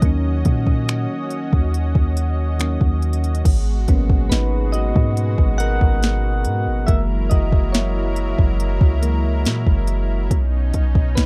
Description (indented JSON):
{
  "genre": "contemporary R&B",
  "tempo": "70 BPM",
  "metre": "4/4",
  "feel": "straight",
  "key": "unclear",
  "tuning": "A4 = 440 Hz",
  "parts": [
    { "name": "soft electric-piano-like synth keys", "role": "accompaniment", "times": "0.0-11.3 s", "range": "D#3 to F#5", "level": "-28 LUFS", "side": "equal", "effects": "chorus" },
    { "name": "lush unison pad", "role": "sustained chords", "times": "0.0-11.3 s", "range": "B2 to D#5", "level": "-31 LUFS", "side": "equal", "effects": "chorus" },
    { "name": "warm 808-style bass", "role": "bass", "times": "0.0-11.3 s", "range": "F#1 to A#2", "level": "-22 LUFS", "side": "equal", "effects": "none" },
    { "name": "smooth R&B drum kit", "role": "drums", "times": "0.0-11.3 s", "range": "crash cymbal, finger snaps, hi-hat, kick drum, snare drum", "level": "-20 LUFS", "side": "equal", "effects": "overdrive" }
  ],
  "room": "little or no reverb",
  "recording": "dark, warm production",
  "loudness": "-19 LUFS",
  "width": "mono",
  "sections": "0.0-3.5 A section; 3.5-11.3 B section",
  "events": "synth keys solo 3.5-11.3",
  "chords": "0.0 D#m7; 3.5 G#m11; 6.9 F#7; 10.3 Badd9"
}